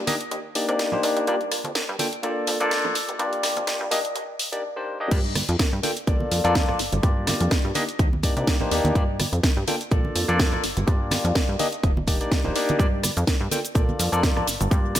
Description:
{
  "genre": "filtered disco house",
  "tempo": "125 BPM",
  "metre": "4/4",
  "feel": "swing 55% on 16ths",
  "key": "unclear",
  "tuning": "A4 = 442 Hz",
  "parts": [
    { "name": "barky tine electric piano", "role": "accompaniment", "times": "0.0-15.0 s", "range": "Bb3 to G5", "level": "-25 LUFS", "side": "left 1 dB", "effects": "phaser, sidechain pumping, low-pass filter, analog delay" },
    { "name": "plucky analog bass", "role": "bass", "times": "0.0-15.0 s", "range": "Eb1 to C3", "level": "-27 LUFS", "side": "equal", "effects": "sidechain pumping, high-pass filter, low-pass filter" },
    { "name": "house drum kit", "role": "drums", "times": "0.1-15.0 s", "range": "cabasa, crash cymbal, hi-hat, rim click, snare drum", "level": "-26 LUFS", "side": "equal", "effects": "sidechain pumping on hats, high-pass filter on hats, studio reverb, sidechain pumping on perc, high-pass filter on perc, high-pass filter on snare, sidechain pumping on cymbals, high-pass filter on cymbals, analog delay" },
    { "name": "maracas and congas", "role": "percussion", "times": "0.1-15.0 s", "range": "none", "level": "-32 LUFS", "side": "right 3 dB", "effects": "sidechain pumping on perc, low-pass filter on perc" },
    { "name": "electronic kick drum", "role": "drums", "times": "5.1-14.8 s", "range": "none", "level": "-22 LUFS", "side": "equal", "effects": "studio reverb" }
  ],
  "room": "moderate plate reverb, RT60 2.0 s, digital ambience",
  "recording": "echo-heavy mix, high-pass filter",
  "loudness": "-21 LUFS",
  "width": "side -12 dB against mid",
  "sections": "0.0-5.1 A section; 5.1-15.0 B section",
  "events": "build-up 0.0-5.1; filter sweep 0.0-5.1; drop 5.1-15.0",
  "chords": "0.1 Ebmaj7; 1.3 Fsus2; 2.0 Bbmaj7; 3.0 Gm7; 3.9 Ebmaj7; 5.1 Fsus2; 5.8 Bbmaj7; 6.8 Gm7; 7.8 Ebmaj7; 9.0 Fsus2; 9.7 Bbmaj7; 10.6 Gm7; 11.6 Ebmaj7; 12.8 Fsus2; 13.5 Bbmaj7; 14.5 Gm7"
}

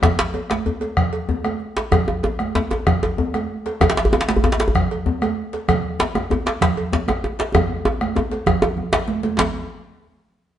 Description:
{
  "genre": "west african traditional, West African drum ensemble",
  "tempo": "128 BPM (dotted quarters)",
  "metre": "12/8",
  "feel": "straight",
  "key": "none",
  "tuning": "none",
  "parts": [
    { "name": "bombo", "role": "percussion", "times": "0.0-9.5 s", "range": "none", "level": "-23 LUFS", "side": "left 2 dB", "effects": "none" },
    { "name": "congas", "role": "percussion", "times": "0.0-9.5 s", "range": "none", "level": "-26 LUFS", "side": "right 6 dB", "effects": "none" },
    { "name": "cowbell", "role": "percussion", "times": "0.0-9.5 s", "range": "none", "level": "-28 LUFS", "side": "right 3 dB", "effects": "none" },
    { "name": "djembe", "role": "percussion", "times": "0.0-9.5 s", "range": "none", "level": "-26 LUFS", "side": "left 4 dB", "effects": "none" },
    { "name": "djembe", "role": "percussion", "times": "0.0-9.5 s", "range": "none", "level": "-21 LUFS", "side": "equal", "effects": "none" }
  ],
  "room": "wet stone room reverb, RT60 1.2 s",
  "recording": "band playing live in one room, nothing above 10.9 kHz",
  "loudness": "-18 LUFS",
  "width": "side -10 dB against mid",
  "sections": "0.0-9.4 A section; 9.4-10.6 B section",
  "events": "speeding up 0.0-10.6; drum fill 7.5-9.4",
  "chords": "none"
}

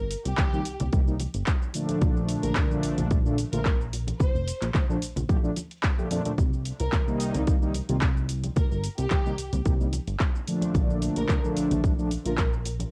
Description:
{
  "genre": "nu-disco, nu disco",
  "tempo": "110 BPM",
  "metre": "4/4",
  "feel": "swing 53% on 16ths",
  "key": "Bb major",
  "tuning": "A4 = 440 Hz",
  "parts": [
    { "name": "warm symphonic violin section", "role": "melody", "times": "0.0-12.4 s", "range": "G4 to C5", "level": "-38 LUFS", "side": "equal", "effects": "cassette tape, analog delay" },
    { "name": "chorused synth bass", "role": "bass", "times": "0.0-12.9 s", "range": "F1 to F2", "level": "-32 LUFS", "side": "equal", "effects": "none" },
    { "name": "house drum kit", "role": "drums", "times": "0.1-12.9 s", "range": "handclaps, hi-hat, shaker", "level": "-36 LUFS", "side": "equal", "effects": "overdrive, cassette tape" },
    { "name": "bongos and congas", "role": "percussion", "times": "0.3-12.9 s", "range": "none", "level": "-37 LUFS", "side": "equal", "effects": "none" },
    { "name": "electronic kick drum", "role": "drums", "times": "0.4-12.5 s", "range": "none", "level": "-26 LUFS", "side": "equal", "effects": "overdrive, cassette tape" },
    { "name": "mellow synth brass", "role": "accompaniment", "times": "0.5-12.3 s", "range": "Bb2 to G4", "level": "-31 LUFS", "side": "equal", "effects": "chorus, sidechain pumping, cassette tape" }
  ],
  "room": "light reverb",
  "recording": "home recording on cassette",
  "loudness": "-26 LUFS",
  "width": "mono",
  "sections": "0.0-12.9 A section",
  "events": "none",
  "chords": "0.0 Cm; 1.7 Bbmaj7; 6.4 Cm7; 10.5 Bbmaj7"
}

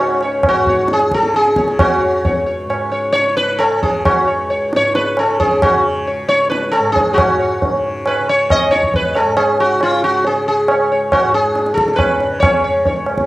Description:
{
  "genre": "indian classical, Hindustani",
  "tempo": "135 BPM",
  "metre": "3/4",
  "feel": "straight",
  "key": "unclear",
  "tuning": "A4 = 440 Hz",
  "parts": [
    { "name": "sitar", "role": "melody", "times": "0.0-13.1 s", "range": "E#4 to D#5", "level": "-15 LUFS", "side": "equal", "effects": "none" },
    { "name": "tanpura", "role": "drone", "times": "0.0-13.3 s", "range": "C#2 to C#3", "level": "-28 LUFS", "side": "left 1 dB", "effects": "cassette tape" },
    { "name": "tabla", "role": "percussion", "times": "0.2-13.3 s", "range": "none", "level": "-17 LUFS", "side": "right 1 dB", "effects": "none" }
  ],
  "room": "moderate spring reverb, RT60 2.9 s",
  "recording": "home recording on cassette",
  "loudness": "-12 LUFS",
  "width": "side -17 dB against mid",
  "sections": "0.0-7.2 A section; 7.2-13.3 B section",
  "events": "speeding up 0.0-13.3",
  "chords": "none"
}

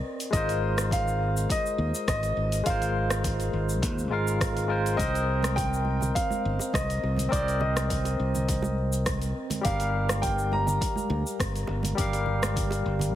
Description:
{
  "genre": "sunset chillout",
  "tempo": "103 BPM",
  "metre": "4/4",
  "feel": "straight",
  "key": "C minor",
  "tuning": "A4 = 441 Hz",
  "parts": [
    { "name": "barky tine electric piano", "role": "accompaniment", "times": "0.0-13.2 s", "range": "G3 to F5", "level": "-30 LUFS", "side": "left 1 dB", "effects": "auto-pan, digital delay" },
    { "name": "deep house drum kit", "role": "drums", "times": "0.2-13.1 s", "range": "hi-hat, rim click, shaker", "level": "-33 LUFS", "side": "equal", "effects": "none" },
    { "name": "warm grand piano", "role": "melody", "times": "0.3-13.2 s", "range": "D5 to Bb5", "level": "-31 LUFS", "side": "equal", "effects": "digital delay" },
    { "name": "modern bright fingered electric bass", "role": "bass", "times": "0.3-13.1 s", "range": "G1 to Eb2", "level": "-28 LUFS", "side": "equal", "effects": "none" },
    { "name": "electronic kick drum", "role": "drums", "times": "0.3-12.7 s", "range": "none", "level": "-31 LUFS", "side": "equal", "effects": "none" },
    { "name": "bongos and congas", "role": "percussion", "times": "5.0-13.1 s", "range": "none", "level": "-36 LUFS", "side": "right 4 dB", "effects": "none" }
  ],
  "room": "moderate lush hall reverb, RT60 2.0 s",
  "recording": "heavily compressed radio sound, multiband compression",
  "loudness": "-24 LUFS",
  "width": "side -12 dB against mid",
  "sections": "0.0-13.2 A section",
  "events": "none",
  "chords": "0.3 Ab69; 5.0 Cm7; 9.7 Gm7"
}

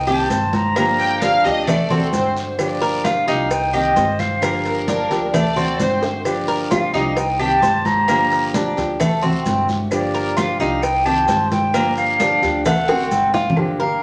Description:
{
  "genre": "latin, Cuban son and guajira",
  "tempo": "131 BPM",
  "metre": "4/4",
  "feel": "straight",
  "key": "G minor",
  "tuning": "A4 = 441 Hz",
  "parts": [
    { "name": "reedy concert flute", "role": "melody", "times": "0.0-14.0 s", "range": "D5 to Bb5", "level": "-23 LUFS", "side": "equal", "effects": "none" },
    { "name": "Cuban tres", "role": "arpeggios", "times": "0.0-14.0 s", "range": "A3 to C5", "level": "-24 LUFS", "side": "equal", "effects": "none" },
    { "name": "upright bass", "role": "bass", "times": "0.0-14.0 s", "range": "G1 to D2", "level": "-32 LUFS", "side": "equal", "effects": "none" },
    { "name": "fingerpicked plugged-in steel-string acoustic guitar", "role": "accompaniment", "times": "0.1-14.0 s", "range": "D3 to G4", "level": "-26 LUFS", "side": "equal", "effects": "none" },
    { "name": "claves", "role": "percussion", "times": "0.1-13.8 s", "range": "none", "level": "-37 LUFS", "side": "equal", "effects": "none" },
    { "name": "congas", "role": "percussion", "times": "0.1-14.0 s", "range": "none", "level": "-26 LUFS", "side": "equal", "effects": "none" },
    { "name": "maracas", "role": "percussion", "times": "0.1-13.6 s", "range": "none", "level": "-42 LUFS", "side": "equal", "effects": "none" },
    { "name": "cowbell and bongos", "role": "percussion", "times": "0.3-13.8 s", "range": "none", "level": "-29 LUFS", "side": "equal", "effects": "none" },
    { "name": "guiro", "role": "percussion", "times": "0.3-13.6 s", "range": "none", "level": "-39 LUFS", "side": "equal", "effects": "none" },
    { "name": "dark studio violin section", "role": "second line", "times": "1.0-6.1 s", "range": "A4 to G5", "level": "-24 LUFS", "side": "equal", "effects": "none" }
  ],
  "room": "wet club reverb, RT60 0.8 s",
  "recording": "none",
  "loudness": "-18 LUFS",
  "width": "mono",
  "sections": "0.0-13.6 A section",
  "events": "drum fill 6.0, 12.7-13.6",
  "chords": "0.0 Cm7; 0.8 Gm7; 1.7 D7; 2.6 Gm7; 3.5 Cm7; 4.4 Gm7; 5.3 D7; 6.3 Gm7; 7.2 Cm7; 8.1 Gm7; 9.0 D7; 9.9 Gm7; 10.8 Cm7; 11.7 Gm7; 12.7 D7"
}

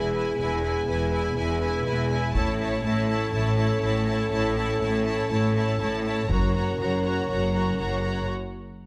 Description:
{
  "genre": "cinematic, epic orchestral film score",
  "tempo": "122 BPM",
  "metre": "4/4",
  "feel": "straight",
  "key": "unclear",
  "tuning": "A4 = 439 Hz",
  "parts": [
    { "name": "rich studio violin section", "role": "melody", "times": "0.0-8.3 s", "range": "G#5 to A#5", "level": "-37 LUFS", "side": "equal", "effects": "none" },
    { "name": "warm symphonic violin section", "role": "second line", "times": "0.0-8.3 s", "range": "B4 to C#5", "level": "-36 LUFS", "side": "equal", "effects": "none" },
    { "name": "rich symphonic viola section", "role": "accompaniment", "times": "0.0-8.3 s", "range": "E4 to F#4", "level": "-35 LUFS", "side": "equal", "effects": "none" },
    { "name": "mellow French horn section", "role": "sustained chords", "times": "0.0-8.2 s", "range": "B3 to A#4", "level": "-32 LUFS", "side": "equal", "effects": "none" },
    { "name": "rich symphonic cello section", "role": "bass", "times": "0.0-8.2 s", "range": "E2 to A2", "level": "-31 LUFS", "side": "equal", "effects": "none" },
    { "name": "warm symphonic double bass section", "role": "bass", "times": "0.0-8.2 s", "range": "E1 to A1", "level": "-32 LUFS", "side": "equal", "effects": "none" },
    { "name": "taiko ensemble", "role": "drums", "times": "2.4-3.3, 6.3-7.2 s", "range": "none", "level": "-32 LUFS", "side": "equal", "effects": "none" }
  ],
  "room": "moderate recital hall reverb, RT60 1.6 s",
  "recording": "none",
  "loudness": "-25 LUFS",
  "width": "mono",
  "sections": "0.0-8.9 A section",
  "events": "build-up 0.0-8.9; break 8.3-8.9",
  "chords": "0.0 E; 2.4 A; 6.3 F#"
}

